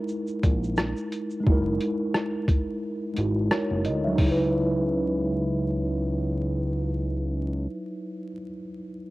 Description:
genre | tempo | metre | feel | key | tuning
lo-fi hip hop | 88 BPM | 4/4 | swing 56% on 16ths | C# dorian | A4 = 441 Hz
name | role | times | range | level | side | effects
mellow tine electric piano | accompaniment | 0.0-9.1 s | F#3 to E5 | -27 LUFS | equal | medium stereo tremolo, low-pass filter, cassette tape
lo-fi sampler-style drum kit | drums | 0.1-4.4 s | hi-hat, kick drum, rim click, shaker | -23 LUFS | equal | overdrive, cassette tape
fat analog bass | bass | 0.4-7.7 s | F#1 to D2 | -28 LUFS | equal | none
room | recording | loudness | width
little or no reverb | home recording on cassette, vinyl crackle | -23 LUFS | side -18 dB against mid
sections
0.0-4.2 A section; 4.2-6.9 B section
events
filter sweep on tine electric piano 0.0-4.2; kick muted 2.8-4.2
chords
0.0 F#13; 4.2 C#m11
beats
0.09 0.77 | 1.46 2.14 2.82 3.50 | 4.18 4.86 5.55 6.23

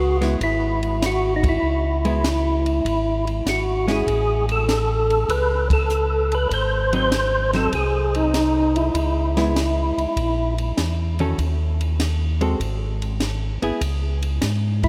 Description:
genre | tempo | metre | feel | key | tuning
soul jazz organ trio | 98 BPM | 4/4 | swing 68% on 8ths | C# minor | A4 = 440 Hz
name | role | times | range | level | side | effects
percussive tonewheel organ | melody | 0.0-10.5, 14.8-14.9 s | D#4 to B#4 | -24 LUFS | equal | slow rotary speaker, chorus vibrato
mellow tonewheel organ | bass | 0.0-14.9 s | G#1 to G#2 | -25 LUFS | equal | slow rotary speaker
hollow-body jazz guitar | accompaniment | 0.2-13.8 s | D#3 to A4 | -32 LUFS | equal | none
compact cocktail drum kit | drums | 0.2-14.9 s | hi-hat, kick drum, ride cymbal, snare drum | -30 LUFS | equal | none
room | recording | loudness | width
wet cathedral reverb, RT60 5.3 s | in a vast, echoing space | -21 LUFS | mono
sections
0.0-13.8 A section; 13.8-14.9 B section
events
band accent 1.3-1.6, 5.6-5.9; tonewheel organ solo 13.8-14.9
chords
0.0 C#m; 4.1 A; 6.5 G#7; 8.9 C#m7; 10.2 A#dim; 11.4 D#dim; 12.6 G#m; 13.8 C#5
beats
0.41 1.02 | 1.63 2.24 2.85 3.46 | 4.07 4.68 5.29 5.90 | 6.51 7.12 7.72 8.33 | 8.94 9.55 10.16 10.77 | 11.38 11.99 12.60 13.20 | 13.81 14.42

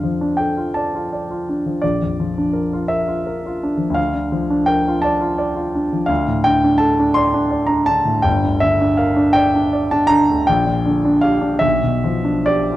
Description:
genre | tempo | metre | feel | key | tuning
classical, romantic nocturne for solo piano | 55 BPM (dotted quarters) | 6/8 | uneven beats, rubato | unclear | A4 = 439 Hz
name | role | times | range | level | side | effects
warm baby grand piano | solo | 0.0-12.8 s | G1 to C6 | -15 LUFS | equal | none
room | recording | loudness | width
moderate recital hall reverb, RT60 1.6 s | close, detailed microphones | -15 LUFS | side -15 dB against mid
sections
0.0-12.8 A section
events
none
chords
0.0 Dm/F; 1.8 Bb; 4.0 Bb/D; 6.1 D5; 8.3 Gm; 10.5 Gm/Bb; 11.6 G7/B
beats
0.74 | 1.82 2.89 | 3.98 5.04 | 6.10 7.17 | 8.26 9.35 | 10.48 11.64

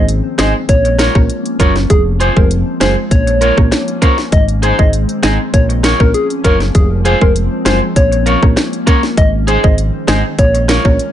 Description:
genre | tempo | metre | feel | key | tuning
dancehall | 99 BPM | 4/4 | straight | Bb minor | A4 = 441 Hz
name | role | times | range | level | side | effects
soft struck synth lead | melody | 0.0-10.8 s | Ab4 to Eb5 | -18 LUFS | left 1 dB | chorus, digital delay
mallet-like synth pluck | accompaniment | 0.0-11.0 s | Ab3 to Eb5 | -21 LUFS | right 4 dB | chorus
glassy FM pad | sustained chords | 0.0-11.1 s | Eb3 to Db4 | -22 LUFS | left 2 dB | ensemble chorus, built-in reverb, sidechain pumping
fingered electric bass | bass | 0.0-11.0 s | F1 to Bb1 | -15 LUFS | equal | none
island pop drum kit | drums | 0.1-11.1 s | hi-hat, kick drum, rim click, snare drum | -12 LUFS | equal | overdrive
semi-hollow electric guitar | arpeggios | 0.4-10.8 s | Eb4 to Db5 | -18 LUFS | equal | none
room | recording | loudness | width
little or no reverb | nothing above 10.5 kHz | -10 LUFS | side -11 dB against mid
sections
0.0-11.1 A section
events
none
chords
0.0 Ab; 0.7 Bbm; 1.9 Fm; 3.1 Bbm; 4.3 Ab; 5.5 Bbm; 6.8 Fm; 8.0 Bbm; 9.2 Ab; 10.4 Bbm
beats
0.08 0.69 1.30 | 1.90 2.51 3.11 3.72 | 4.33 4.93 5.54 6.14 | 6.75 7.36 7.96 8.57 | 9.18 9.78 10.39 10.99

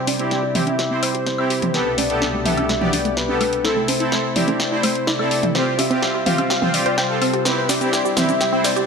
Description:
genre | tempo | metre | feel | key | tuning
progressive house | 126 BPM | 4/4 | straight | C major | A4 = 438 Hz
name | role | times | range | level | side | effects
soft octave-layered synth lead | melody | 0.0-8.9 s | A4 to F5 | -23 LUFS | left 2 dB | chorus, digital delay
warm analog pad | sustained chords | 0.0-8.9 s | C2 to C5 | -26 LUFS | left 1 dB | chorus
wide unison pluck | arpeggios | 0.1-8.8 s | A3 to G5 | -26 LUFS | right 1 dB | digital delay
house drum kit | drums | 0.1-8.9 s | cabasa, hi-hat, snare drum | -24 LUFS | left 1 dB | high-pass filter on hats, high-pass filter on perc, high-pass filter on snare
electronic congas, toms and woodblock | percussion | 0.1-8.7 s | none | -25 LUFS | right 3 dB | none
soft supersaw | stabs | 0.2-8.6 s | B3 to D5 | -23 LUFS | right 1 dB | digital delay
riser | sound effects | 8.5-8.9 s | none | -40 LUFS | equal | none
room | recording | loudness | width
moderate lush hall reverb, RT60 1.6 s, digital ambience | none | -17 LUFS | side -5 dB against mid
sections
0.0-8.9 A section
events
build-up 0.0-8.9; drum fill 0.0-8.9; filter sweep on synth pluck 0.0-8.9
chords
0.0 C; 1.7 Gadd9/C; 3.6 Am/C; 5.6 Fsus2/C; 7.5 C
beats
0.31 0.79 1.26 | 1.74 2.22 2.69 3.17 | 3.65 4.12 4.60 5.08 | 5.55 6.03 6.50 6.98 | 7.46 7.93 8.41

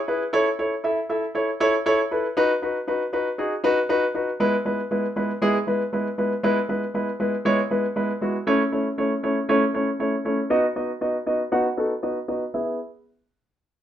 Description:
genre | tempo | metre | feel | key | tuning
pop | 118 BPM | 4/4 | straight | E major | A4 = 439 Hz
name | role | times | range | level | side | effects
dark concert grand piano | solo | 0.1-12.8 s | G#3 to F#5 | -21 LUFS | equal | low-pass filter
room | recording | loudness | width
wet studio reverb, RT60 0.6 s | band playing live in one room | -21 LUFS | side -10 dB against mid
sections
0.0-4.4 A section; 4.4-12.5 B section; 12.5-13.8 C section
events
drop 0.0-4.4; filter sweep on grand piano 4.4-12.5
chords
0.3 A; 2.4 B; 4.4 E; 8.5 A; 10.5 B; 12.5 E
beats
| 0.34 0.84 1.35 1.86 | 2.37 2.88 3.39 3.90 | 4.40 4.91 5.42 5.93 | 6.44 6.95 7.45 7.96 | 8.47 8.98 9.49 10.00 | 10.51 11.01 11.52 12.03 | 12.54

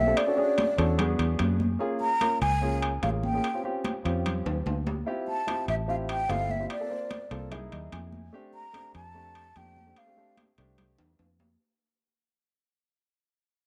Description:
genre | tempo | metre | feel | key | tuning
Afro-Cuban jazz | 147 BPM | 4/4 | straight | F major | A4 = 436 Hz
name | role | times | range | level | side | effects
breathy mellow concert flute | melody | 0.0-10.4 s | D5 to Bb5 | -31 LUFS | equal | none
fingered electric bass | bass | 0.0-11.6 s | G1 to F#2 | -32 LUFS | equal | none
dark grand piano | accompaniment | 0.1-11.2 s | A3 to G#5 | -35 LUFS | equal | none
congas | percussion | 0.2-11.5 s | none | -37 LUFS | equal | none
timbales | percussion | 0.2-11.5 s | none | -39 LUFS | equal | none
room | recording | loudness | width
moderate spring reverb, RT60 2.5 s | none | -28 LUFS | mono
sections
0.0-11.6 A section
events
fade-out 0.0-11.6; drum fill 4.5-5.1, 11.0-11.6; grand piano fill 7.5-8.3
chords
0.2 E13; 1.0 E9; 1.8 Aaug; 3.4 Eb13 (rootless); 5.1 G13sus4; 6.7 C13sus4; 7.5 C7alt; 8.3 F69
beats
| 0.17 0.58 0.99 1.40 | 1.80 2.21 2.62 3.03 | 3.44 3.84 4.25 4.66 | 5.07 5.48 5.88 6.29 | 6.70 7.11 7.52 7.93 | 8.34 8.74 9.15 9.56 | 9.97 10.38 10.79 11.19

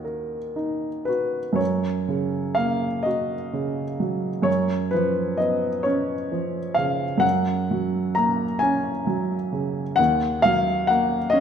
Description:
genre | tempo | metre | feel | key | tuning
classical, romantic nocturne for solo piano | 43 BPM (dotted quarters) | 6/8 | uneven beats, rubato | F# major | A4 = 440 Hz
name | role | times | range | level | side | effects
clear upright piano | solo | 0.0-11.4 s | Eb2 to A#5 | -21 LUFS | equal | none
room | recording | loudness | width
wet recital hall reverb, RT60 1.6 s | minimal, uncompressed stereo recording | -21 LUFS | side -8 dB against mid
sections
0.0-1.6 A section; 1.6-11.4 B section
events
none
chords
0.0 Ebm; 1.6 F#; 4.5 C#7/F#; 7.2 F#; 10.0 D#m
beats
0.05 | 1.59 3.06 | 4.47 5.86 | 7.23 8.62 | 9.99 11.33

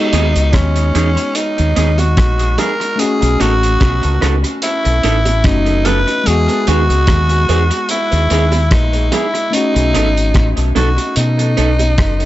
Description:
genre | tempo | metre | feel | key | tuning
lovers rock reggae | 73 BPM | 4/4 | swing 55% on 16ths | B major | A4 = 440 Hz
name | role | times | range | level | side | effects
raspy tenor saxophone | melody | 0.0-12.3 s | C#4 to B4 | -17 LUFS | equal | dub echo
mellow tine electric piano | accompaniment | 0.0-12.3 s | G#3 to D#5 | -22 LUFS | left 3 dB | none
electric guitar through a small old amp | stabs | 0.1-11.7 s | B3 to A4 | -22 LUFS | right 4 dB | phaser, dub echo
deep dub fingered electric bass | bass | 0.1-12.3 s | F#1 to B2 | -14 LUFS | equal | none
cloth-damped thuddy drum kit | drums | 0.1-12.3 s | hi-hat, kick drum, rim click | -18 LUFS | equal | dub echo
bongos | percussion | 0.5-12.0 s | none | -28 LUFS | right 4 dB | none
room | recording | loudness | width
small room ambience | nothing above 7.9 kHz | -11 LUFS | side -15 dB against mid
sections
0.0-12.3 A section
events
none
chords
0.0 Emaj7 (rootless); 3.0 B7; 6.3 Emaj7; 9.5 B7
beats
0.54 1.35 2.17 | 2.99 3.81 4.62 5.44 | 6.26 7.08 7.89 8.71 | 9.53 10.35 11.16 11.98

